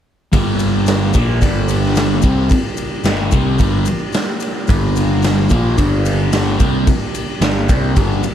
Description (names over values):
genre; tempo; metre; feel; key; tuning
psychedelic rock; 110 BPM; 4/4; straight; G minor; A4 = 441 Hz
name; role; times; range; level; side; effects
combo organ; sustained chords; 0.3-8.3 s; G3 to G4; -27 LUFS; right 7 dB; none
fuzz guitar; riff; 0.3-8.2 s; G2 to C4; -18 LUFS; left 1 dB; distortion, phaser
fuzz picked electric bass; bass; 0.3-8.2 s; G1 to C2; -18 LUFS; equal; overdrive
raw garage drum kit; drums; 0.3-8.3 s; kick drum, ride cymbal, snare drum; -17 LUFS; equal; none
maracas; percussion; 0.3-8.3 s; none; -34 LUFS; left 13 dB; none
room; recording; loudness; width
small room ambience; echo-heavy mix; -13 LUFS; side -10 dB against mid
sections
0.3-8.3 A section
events
none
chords
0.3 Gm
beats
| 0.33 0.88 1.42 1.97 | 2.51 3.05 3.60 4.14 | 4.69 5.23 5.78 6.33 | 6.87 7.42 7.96